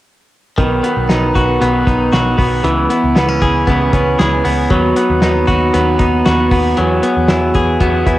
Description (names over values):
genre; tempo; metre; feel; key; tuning
jangly indie pop; 116 BPM; 4/4; straight; B major; A4 = 438 Hz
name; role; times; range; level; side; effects
electric guitar through a small old amp; accompaniment; 0.6-8.2 s; B2 to B4; -16 LUFS; right 4 dB; spring reverb, cassette tape
direct-recorded clean electric guitar; arpeggios; 0.6-8.2 s; D#3 to G#4; -15 LUFS; left 3 dB; spring reverb, cassette tape, tape echo
vintage muted picked electric bass; bass; 0.6-8.2 s; B1 to E2; -18 LUFS; equal; none
cloth-damped thuddy drum kit; drums; 0.6-8.2 s; hi-hat, kick drum, snare drum; -18 LUFS; equal; cassette tape
room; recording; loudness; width
moderate small room reverb, RT60 0.5 s; home recording on cassette; -11 LUFS; side -15 dB against mid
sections
0.6-8.2 A section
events
none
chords
0.6 B; 2.6 C#m7; 4.7 B/D#; 6.8 Eadd9